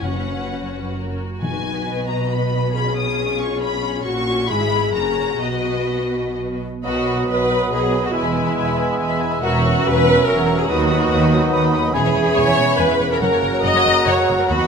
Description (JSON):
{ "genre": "classical, dramatic, fast romantic movement for symphony orchestra", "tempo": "124-144 BPM", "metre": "3/4", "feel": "rubato", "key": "B major", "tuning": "A4 = 440 Hz", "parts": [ { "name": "rich symphonic violin section", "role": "melody", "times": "0.0-14.7 s", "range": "D#5 to D#6", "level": "-28 LUFS", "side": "left 5 dB", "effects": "none" }, { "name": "rich symphonic violin section", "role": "second line", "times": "0.0-14.6 s", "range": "F#4 to B5", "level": "-29 LUFS", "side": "left 4 dB", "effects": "none" }, { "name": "rich symphonic viola section", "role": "accompaniment", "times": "0.0-14.7 s", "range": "G#3 to D#5", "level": "-22 LUFS", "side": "equal", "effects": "none" }, { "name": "mellow French horn section", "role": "sustained chords", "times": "0.0-14.7 s", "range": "A#3 to B4", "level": "-25 LUFS", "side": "left 4 dB", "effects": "none" }, { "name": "dark symphonic cello section", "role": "bass", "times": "0.0-14.6 s", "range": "D#2 to B2", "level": "-26 LUFS", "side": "right 2 dB", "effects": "none" }, { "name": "warm symphonic double bass section", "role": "bass", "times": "0.0-14.5 s", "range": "E1 to D#2", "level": "-25 LUFS", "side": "right 3 dB", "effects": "none" }, { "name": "timpani", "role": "percussion", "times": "0.0-2.1 s", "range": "F#2 to B2", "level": "-31 LUFS", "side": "left 2 dB", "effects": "none" }, { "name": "mellow cor anglais", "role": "second line", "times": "6.8-14.7 s", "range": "D#5 to G#5", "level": "-26 LUFS", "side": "right 1 dB", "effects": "none" }, { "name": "mellow hollow large flute ensemble", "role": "second line", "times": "6.8-14.7 s", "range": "A#5 to B5", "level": "-28 LUFS", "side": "right 1 dB", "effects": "none" }, { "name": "warm clarinet", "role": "second line", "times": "6.8-14.7 s", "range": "B3 to D#4", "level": "-28 LUFS", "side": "left 3 dB", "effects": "none" }, { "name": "clear bassoon", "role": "accompaniment", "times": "6.8-14.7 s", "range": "E3 to G#3", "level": "-27 LUFS", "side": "right 2 dB", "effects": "none" }, { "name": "clear trombone section", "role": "sustained chords", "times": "6.8-14.7 s", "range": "C#3 to G#3", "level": "-26 LUFS", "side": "right 5 dB", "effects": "none" } ], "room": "moderate scoring stage reverb, RT60 1.7 s", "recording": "none", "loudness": "-16 LUFS", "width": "side -6 dB against mid", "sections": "0.0-6.8 A section; 6.8-14.7 B section", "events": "none", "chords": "0.0 F#sus4; 1.4 B; 2.7 C#7/B; 4.0 F#/A#; 4.5 E/G#; 4.9 F#; 5.4 B; 8.1 E; 9.4 F#7/E; 10.7 B/D#; 12.0 C#m7/E; 13.2 F#" }